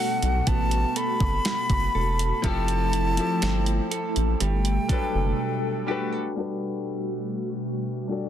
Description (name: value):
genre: contemporary R&B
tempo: 61 BPM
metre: 4/4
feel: straight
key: G major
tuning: A4 = 444 Hz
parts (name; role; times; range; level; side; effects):
- concert flute; melody; 0.0-5.8 s; F#5 to B5; -29 LUFS; left 1 dB; ping-pong delay
- clear grand piano; accompaniment; 0.0-8.3 s; F3 to D5; -32 LUFS; left 6 dB; none
- hollow soft pad; sustained chords; 0.0-8.3 s; B2 to A4; -30 LUFS; equal; ensemble chorus
- direct-recorded clean electric guitar; arpeggios; 0.0-7.0 s; F3 to A4; -33 LUFS; right 8 dB; spring reverb, ping-pong delay
- rubbery square bass; bass; 0.2-5.3 s; E1 to B1; -25 LUFS; equal; none
- crisp 8-bit digital drum machine; drums; 0.2-5.1 s; hi-hat, kick drum, snare drum; -28 LUFS; right 1 dB; overdrive
room: digital ambience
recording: dense, heavily limited modern master, low-pass filter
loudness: -23 LUFS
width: side -10 dB against mid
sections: 0.0-6.4 A section; 6.4-8.3 B section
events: break 5.4-6.4; filter sweep 6.4-8.3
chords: 0.0 Gmaj9; 2.4 Fmaj7; 4.4 Gmaj9